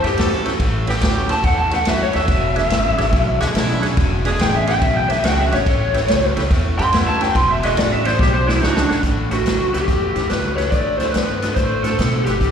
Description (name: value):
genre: electric blues shuffle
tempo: 142 BPM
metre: 4/4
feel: swing 66% on 8ths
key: A mixolydian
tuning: A4 = 440 Hz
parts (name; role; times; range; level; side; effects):
- lead guitar through a small cranked amp; melody; 0.0-12.5 s; D4 to C6; -20 LUFS; equal; overdrive, slapback echo
- percussive tonewheel organ; accompaniment; 0.0-12.3 s; C4 to D5; -29 LUFS; right 5 dB; slow rotary speaker, overdrive, chorus vibrato, slapback echo
- overdriven semi-hollow guitar; riff; 0.0-12.5 s; E2 to B3; -24 LUFS; left 2 dB; slapback echo
- bright horn section; stabs; 0.0-9.0 s; G#3 to A4; -25 LUFS; right 1 dB; slapback echo
- upright bass; bass; 0.0-12.5 s; E1 to B2; -22 LUFS; equal; none
- swinging big-band drum kit; drums; 0.0-12.5 s; hi-hat, kick drum, ride cymbal, snare drum; -21 LUFS; equal; none
room: light reverb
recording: live gig heard through the venue's PA, recital hall reverb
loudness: -15 LUFS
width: side -7 dB against mid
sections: 0.0-9.0 A section; 9.0-12.5 B section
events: lead electric guitar solo 0.0-9.0; drum fill 8.2-9.0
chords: 0.0 A9; 2.3 E9; 5.7 A9; 7.3 E9; 9.0 A9; 10.7 D9